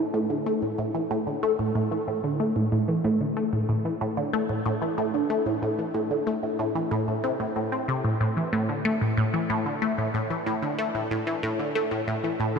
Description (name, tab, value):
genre	ambient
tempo	93 BPM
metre	4/4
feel	straight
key	A minor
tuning	A4 = 441 Hz
part	resonant blip pluck	solo	0.0-12.6 s	A2 to C4	-24 LUFS	equal	phaser, ping-pong delay
room	wet huge ambient reverb, RT60 8.2 s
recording	dreamy mix soaked in reverb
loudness	-24 LUFS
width	side -6 dB against mid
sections	0.0-12.6 A section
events	none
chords	none